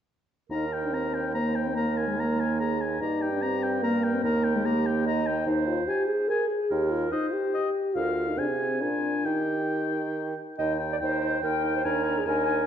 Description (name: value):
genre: quick classical-period movement for wind quintet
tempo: 144 BPM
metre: 3/4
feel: rubato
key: Eb major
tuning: A4 = 440 Hz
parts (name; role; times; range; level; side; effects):
- clear oboe; second line; 0.5-12.7 s; Eb5 to Bb5; -32 LUFS; left 4 dB; none
- dark French horn; accompaniment; 0.5-12.7 s; Ab3 to Bb4; -28 LUFS; left 1 dB; none
- warm clarinet; accompaniment; 0.5-12.7 s; F4 to Eb5; -32 LUFS; right 6 dB; none
- mellow bassoon; bass; 0.5-12.6 s; D2 to Eb3; -31 LUFS; right 2 dB; none
- silver concert flute; melody; 11.0-12.7 s; Eb5 to Bb5; -31 LUFS; left 11 dB; none
room: wet recital hall reverb, RT60 1.8 s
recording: dark, warm production, nothing above 8.0 kHz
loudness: -24 LUFS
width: side -9 dB against mid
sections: 0.5-10.6 A section; 10.6-12.7 A section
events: none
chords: 0.5 Eb; 1.8 Ebsus4; 3.0 Gmadd11; 4.2 Eb; 5.5 Ab/Eb; 6.7 Eb; 8.0 Bb/D; 8.4 Ab/C; 8.8 Bb7; 9.3 Eb; 11.8 Bb7/Eb